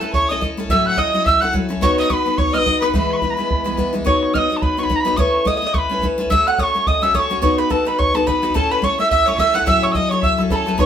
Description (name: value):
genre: celtic folk, Celtic reel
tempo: 214 BPM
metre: 4/4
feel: swing 57% on 8ths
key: unclear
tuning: A4 = 440 Hz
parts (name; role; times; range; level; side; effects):
- mellow tin whistle; melody; 0.0-10.9 s; A5 to F#6; -19 LUFS; equal; none
- mandolin; second line; 0.0-10.9 s; A4 to F#5; -23 LUFS; right 4 dB; none
- rich fiddle; second line; 0.0-3.9, 8.6-10.9 s; A4 to F#5; -23 LUFS; equal; none
- picked steel-string acoustic guitar; accompaniment; 0.0-10.9 s; A2 to C#5; -21 LUFS; left 2 dB; none
- bodhran; percussion; 0.1-10.9 s; none; -23 LUFS; right 1 dB; none
room: wet studio reverb, RT60 0.5 s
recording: band playing live in one room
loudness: -15 LUFS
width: side -9 dB against mid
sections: 0.0-4.1 A section; 4.1-10.9 A section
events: none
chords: 0.0 A; 0.7 F#m7/A; 1.8 B; 2.9 E; 4.1 Badd9; 5.2 Aadd9; 6.3 F#m/A; 7.4 B; 8.5 A; 9.7 F#m7/A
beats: 0.14 0.42 | 0.70 0.98 1.26 1.54 | 1.82 2.10 2.38 2.66 | 2.94 3.22 3.50 3.78 | 4.06 4.34 4.62 4.90 | 5.18 5.46 5.74 6.02 | 6.30 6.58 6.86 7.14 | 7.42 7.70 7.99 8.27 | 8.54 8.82 9.11 9.38 | 9.66 9.95 10.22 10.51 | 10.79